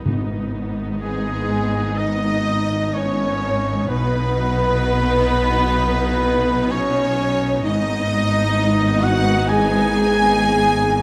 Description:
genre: cinematic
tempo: 64 BPM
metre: 4/4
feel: rubato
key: G# minor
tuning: A4 = 441 Hz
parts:
  - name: warm symphonic violin section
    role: melody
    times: 0.0-11.0 s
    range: G#4 to G#5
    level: -31 LUFS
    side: equal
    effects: none
  - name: mellow hollow silver concert flute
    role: second line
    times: 0.0-11.0 s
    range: G#4 to G#5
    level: -29 LUFS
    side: equal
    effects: none
  - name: warm oboe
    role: second line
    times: 0.0-11.0 s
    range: G#4 to G#5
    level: -29 LUFS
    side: equal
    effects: none
  - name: warm symphonic violin section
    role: second line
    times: 0.0-11.0 s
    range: G#4 to G#5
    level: -28 LUFS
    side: equal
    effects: none
  - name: clear French horn section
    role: sustained chords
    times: 0.0-11.0 s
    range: G#3 to G#4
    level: -26 LUFS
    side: equal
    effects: none
  - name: rich symphonic double bass section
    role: bass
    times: 0.0-11.0 s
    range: G#1 to B1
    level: -28 LUFS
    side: equal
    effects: none
  - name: rich symphonic viola section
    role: accompaniment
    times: 0.1-11.0 s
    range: B3 to D#4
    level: -28 LUFS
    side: equal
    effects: none
  - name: rich symphonic cello section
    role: bass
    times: 0.1-11.0 s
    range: G#2 to B2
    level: -25 LUFS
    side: equal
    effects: none
  - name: timpani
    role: percussion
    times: 0.1-1.5 s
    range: G#2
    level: -28 LUFS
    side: equal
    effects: none
room: moderate concert hall reverb, RT60 2.2 s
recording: none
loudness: -19 LUFS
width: mono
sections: 0.0-11.0 A section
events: none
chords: 0.1 G#m; 3.9 B; 7.6 G#m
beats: | 0.06 1.01 1.99 2.95 | 3.90 4.84 5.79 6.72 | 7.64 8.57 9.49 10.42

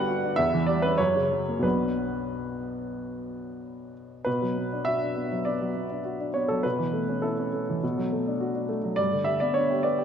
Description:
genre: classical, romantic character piece for solo piano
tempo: 90-105 BPM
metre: 4/4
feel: rubato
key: B minor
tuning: A4 = 441 Hz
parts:
  - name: warm baby grand piano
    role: solo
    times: 0.0-10.0 s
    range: G1 to F#5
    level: -25 LUFS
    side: equal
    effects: none
room: wet concert hall reverb, RT60 2.4 s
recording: dark, warm production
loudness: -24 LUFS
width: side -8 dB against mid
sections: 0.0-4.3 A section; 4.3-10.0 B section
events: none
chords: 0.4 C#dim/E; 1.0 F#; 1.6 Bm; 6.6 A/B; 7.8 D/B; 9.0 G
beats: 0.37 0.99 | 1.64 2.31 2.97 3.62 | 4.26 4.87 5.47 6.05 | 6.64 7.23 7.82 8.41 | 8.98 9.56

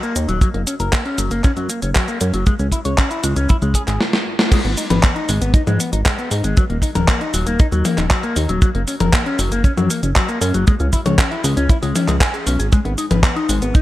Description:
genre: italo disco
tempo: 117 BPM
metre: 4/4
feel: straight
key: G# minor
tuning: A4 = 440 Hz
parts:
  - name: electric guitar with an envelope filter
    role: arpeggios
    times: 0.0-13.8 s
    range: F#3 to G#5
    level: -22 LUFS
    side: left 2 dB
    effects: tape echo
  - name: gated 80s digital drum machine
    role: drums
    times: 0.0-13.8 s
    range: cabasa, crash cymbal, handclaps, hi-hat, snare drum, toms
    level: -20 LUFS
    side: left 1 dB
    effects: gated reverb, gated reverb snare
  - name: chorused synth bass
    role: bass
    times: 0.2-13.7 s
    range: D#1 to G#2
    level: -20 LUFS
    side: equal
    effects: tube saturation
  - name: kick drum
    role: drums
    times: 0.4-13.8 s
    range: none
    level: -14 LUFS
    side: equal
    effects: none
room: light reverb, digital ambience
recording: none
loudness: -15 LUFS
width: side -15 dB against mid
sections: 0.0-4.5 A section; 4.5-13.8 B section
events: drum fill 4.0-4.5; band accent 4.4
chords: 0.4 F#; 2.5 C#m; 4.5 G#m; 6.6 D#m; 8.6 F#; 10.7 C#m; 12.7 G#m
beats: | 0.41 0.93 1.44 1.95 | 2.47 2.98 3.49 4.00 | 4.52 5.03 5.54 6.06 | 6.57 7.08 7.59 8.11 | 8.62 9.13 9.65 10.16 | 10.67 11.18 11.70 12.21 | 12.72 13.24 13.75

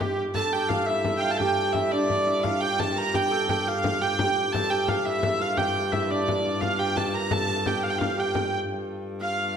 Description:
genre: medieval dance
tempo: 115 BPM (dotted quarters)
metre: 6/8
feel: straight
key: unclear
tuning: A4 = 440 Hz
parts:
  - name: clear hurdy-gurdy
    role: melody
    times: 0.0-9.6 s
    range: G4 to Bb5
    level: -26 LUFS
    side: right 2 dB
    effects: none
  - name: warm viola da gamba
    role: drone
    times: 0.0-9.6 s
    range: G2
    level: -35 LUFS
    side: left 2 dB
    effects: none
  - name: frame drum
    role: percussion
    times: 0.0-8.6 s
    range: none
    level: -31 LUFS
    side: left 4 dB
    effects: none
  - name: Celtic harp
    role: second line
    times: 0.4-9.6 s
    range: D4 to Bb4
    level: -28 LUFS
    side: right 2 dB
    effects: tape echo
room: wet recital hall reverb, RT60 1.6 s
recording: none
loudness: -23 LUFS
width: side -7 dB against mid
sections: 0.4-8.7 A section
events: none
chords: none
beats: | 0.35 0.88 | 1.40 1.93 | 2.45 2.97 | 3.49 4.01 | 4.54 5.06 | 5.58 6.10 | 6.62 7.14 | 7.66 8.18 | 8.70 9.21

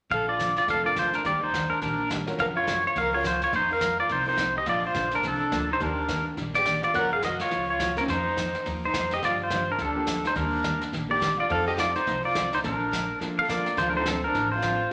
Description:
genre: country, western swing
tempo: 211 BPM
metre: 4/4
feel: swing 60% on 8ths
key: Bb major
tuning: A4 = 439 Hz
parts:
  - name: pedal steel guitar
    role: melody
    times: 0.1-14.9 s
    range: A4 to Gb5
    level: -28 LUFS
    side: equal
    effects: none
  - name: dark fiddle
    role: second line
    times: 0.1-14.9 s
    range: C4 to Bb4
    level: -33 LUFS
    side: equal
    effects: none
  - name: picked steel-string acoustic guitar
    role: accompaniment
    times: 0.1-14.7 s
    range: Db3 to Bb4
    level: -38 LUFS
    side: equal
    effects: none
  - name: upright bass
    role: bass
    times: 0.1-14.8 s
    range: F1 to G2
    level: -39 LUFS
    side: equal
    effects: none
  - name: vintage brush drum kit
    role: drums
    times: 0.1-14.9 s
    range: brushed snare drum, hi-hat, kick drum, snare drum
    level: -38 LUFS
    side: equal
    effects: none
  - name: bright upright piano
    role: accompaniment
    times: 0.8-14.9 s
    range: Eb3 to Bb4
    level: -39 LUFS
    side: equal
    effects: none
room: wet large studio reverb, RT60 1.1 s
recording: none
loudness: -26 LUFS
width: mono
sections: 0.1-4.7 A section; 4.7-13.8 B section; 13.8-14.9 C section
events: none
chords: 0.1 Bbmaj7; 1.2 Ebmaj7; 2.4 Gbmaj7; 3.5 F7sus4; 4.7 Bbmaj7; 5.8 Ebmaj7; 6.9 Gbmaj7; 8.1 F7sus4; 9.2 Gm7; 10.4 Ebmaj7; 11.5 F7; 12.6 Bbmaj7; 13.8 Dm7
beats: | 0.11 0.39 0.68 0.96 | 1.25 1.53 1.82 2.10 | 2.39 2.67 2.96 3.25 | 3.53 3.81 4.10 4.38 | 4.67 4.95 5.24 5.52 | 5.81 6.09 6.38 6.66 | 6.95 7.23 7.52 7.80 | 8.09 8.37 8.65 8.94 | 9.22 9.51 9.79 10.08 | 10.36 10.65 10.93 11.22 | 11.50 11.79 12.07 12.36 | 12.64 12.93 13.21 13.50 | 13.78 14.07 14.35 14.64 | 14.92

